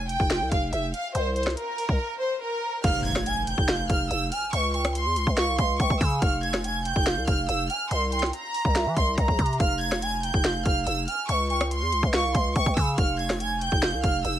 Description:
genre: hip hop, trap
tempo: 142 BPM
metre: 4/4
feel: half-time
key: F harmonic minor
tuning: A4 = 441 Hz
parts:
  - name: warm studio violin section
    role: melody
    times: 0.0-14.4 s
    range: Bb4 to Ab6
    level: -27 LUFS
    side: equal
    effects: none
  - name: growling 808-style bass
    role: bass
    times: 0.0-14.4 s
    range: F1 to E3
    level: -28 LUFS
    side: equal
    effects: none
  - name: trap drum kit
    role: drums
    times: 0.1-14.3 s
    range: crash cymbal, hi-hat, kick drum, rim click, snare drum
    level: -26 LUFS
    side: equal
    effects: overdrive, vintage 12-bit sampler grit
  - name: gliding portamento lead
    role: second line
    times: 2.8-14.4 s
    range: E5 to Ab5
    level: -32 LUFS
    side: right 4 dB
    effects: chorus, ping-pong delay
  - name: impact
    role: sound effects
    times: 2.8-4.5 s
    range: none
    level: -35 LUFS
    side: equal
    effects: none
room: digital ambience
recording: vinyl crackle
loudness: -23 LUFS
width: side -11 dB against mid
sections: 0.0-2.8 A section; 2.8-14.4 B section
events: break 2.0-2.8; impact 2.8-4.5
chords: 0.0 F5; 1.1 Bbsus2/C; 2.8 Fmadd9; 4.5 Db; 6.2 F5; 7.9 C7; 9.6 Fmadd9; 11.3 Db; 13.0 F5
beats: 0.30 0.73 | 1.15 1.57 1.99 2.42 | 2.84 3.26 3.68 4.11 | 4.53 4.95 5.37 5.80 | 6.22 6.64 7.06 7.49 | 7.91 8.33 8.75 9.18 | 9.60 10.02 10.45 10.87 | 11.29 11.71 12.13 12.56 | 12.98 13.40 13.82 14.25

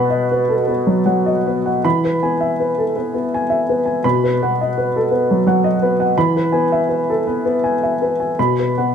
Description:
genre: neoclassical minimalist piano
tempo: 55 BPM (dotted quarters)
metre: 6/8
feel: uneven beats, rubato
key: E major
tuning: A4 = 440 Hz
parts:
  - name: warm upright piano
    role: solo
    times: 0.0-8.9 s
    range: B2 to B5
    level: -15 LUFS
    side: equal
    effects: none
room: moderate recital hall reverb, RT60 1.6 s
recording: close, detailed microphones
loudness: -15 LUFS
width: side -7 dB against mid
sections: 0.0-8.9 A section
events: none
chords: 0.0 B; 1.8 E; 4.0 B; 6.2 E; 8.4 B5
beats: 0.69 | 1.85 2.96 | 4.04 5.10 | 6.16 7.24 | 8.37

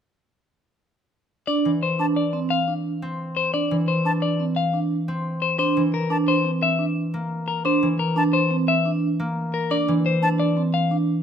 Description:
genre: classical, minimalist pattern music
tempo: 175 BPM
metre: 6/4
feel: straight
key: D minor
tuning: A4 = 440 Hz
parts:
  - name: clean electric guitar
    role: melody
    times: 1.5-11.0 s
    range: Bb4 to F5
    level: -24 LUFS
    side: left 6 dB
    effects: none
  - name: vibraphone with medium mallets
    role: arpeggios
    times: 1.5-11.1 s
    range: C4 to D4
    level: -24 LUFS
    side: right 5 dB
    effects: none
  - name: concert harp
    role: accompaniment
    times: 1.7-11.2 s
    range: E3 to C4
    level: -25 LUFS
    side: equal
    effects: none
  - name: concert flute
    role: arpeggios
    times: 2.0-10.3 s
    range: A5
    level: -26 LUFS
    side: left 2 dB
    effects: none
room: wet large studio reverb, RT60 1.4 s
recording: close, detailed microphones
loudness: -20 LUFS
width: side -8 dB against mid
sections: 1.5-11.2 A section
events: none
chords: 1.5 D7(no3); 5.6 Bbadd9; 9.7 D7(no3)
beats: | 1.48 1.82 2.17 2.51 2.85 3.19 | 3.54 3.88 4.22 4.57 4.91 5.25 | 5.59 5.94 6.28 6.62 6.97 7.31 | 7.65 8.00 8.34 8.68 9.02 9.37 | 9.71 10.05 10.39 10.74 11.08

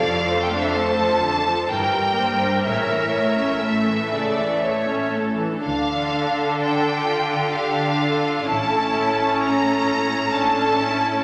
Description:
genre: classical, slow romantic movement for string orchestra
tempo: 60-66 BPM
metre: 3/4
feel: rubato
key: unclear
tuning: A4 = 440 Hz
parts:
  - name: bright symphonic violin section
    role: melody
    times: 0.0-11.2 s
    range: E5 to Bb5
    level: -26 LUFS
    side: equal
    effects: none
  - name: clear symphonic violin section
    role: second line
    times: 0.0-11.2 s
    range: C#4 to E5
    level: -29 LUFS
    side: equal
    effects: none
  - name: clear symphonic viola section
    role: accompaniment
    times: 0.0-11.2 s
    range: C#3 to Bb4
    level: -25 LUFS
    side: equal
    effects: none
  - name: rich studio double bass section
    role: bass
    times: 0.0-9.4 s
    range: F1 to D2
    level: -40 LUFS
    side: equal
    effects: none
  - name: rich symphonic cello section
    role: bass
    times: 0.0-11.2 s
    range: F2 to D3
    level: -30 LUFS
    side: equal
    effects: none
room: wet scoring stage reverb, RT60 2.0 s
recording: nothing above 10.5 kHz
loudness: -21 LUFS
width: mono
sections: 0.0-11.2 A section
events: none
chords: 0.0 Dm/F; 1.7 Em7b5/G; 2.7 A; 5.6 Dm; 8.5 A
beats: 0.77 1.70 | 2.66 3.64 4.64 | 5.63 6.58 7.53 | 8.48 9.41 10.33

